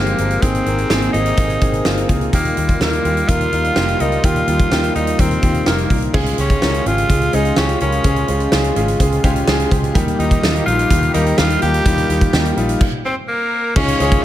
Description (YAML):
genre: 1980s-style pop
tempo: 126 BPM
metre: 4/4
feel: straight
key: unclear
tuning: A4 = 440 Hz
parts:
  - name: raspy tenor saxophone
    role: melody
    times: 0.0-14.2 s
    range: Bb3 to G4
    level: -20 LUFS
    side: equal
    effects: ping-pong delay
  - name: clear concert grand piano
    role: accompaniment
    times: 0.0-14.2 s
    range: G3 to F5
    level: -20 LUFS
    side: equal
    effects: none
  - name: warm analog pad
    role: sustained chords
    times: 0.0-14.2 s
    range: C3 to Ab4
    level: -26 LUFS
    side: equal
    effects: chorus, tremolo
  - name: vintage muted fingered electric bass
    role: bass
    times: 0.0-14.2 s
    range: F1 to Eb2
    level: -20 LUFS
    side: equal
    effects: none
  - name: huge arena drum kit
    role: drums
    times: 0.1-14.2 s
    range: crash cymbal, hi-hat, kick drum, snare drum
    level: -18 LUFS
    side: equal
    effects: none
  - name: clear studio violin section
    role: second line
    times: 13.0-14.2 s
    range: Bb4 to Db5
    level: -28 LUFS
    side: right 2 dB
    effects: none
room: moderate recital hall reverb, RT60 1.5 s, small room ambience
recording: none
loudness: -14 LUFS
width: side -12 dB against mid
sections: 0.0-6.1 A section; 6.1-13.8 B section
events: grand piano fill 1.6-2.3; stop 12.8-13.8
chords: 0.4 Abadd9; 2.3 Ebadd9; 6.1 Db; 10.0 Eb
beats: | 0.43 0.90 1.38 1.86 | 2.33 2.81 3.28 3.76 | 4.24 4.71 5.19 5.67 | 6.14 6.62 7.09 7.57 | 8.05 8.52 9.00 9.47 | 9.95 10.43 10.90 11.38 | 11.86 12.33 12.81 13.28 | 13.76 14.24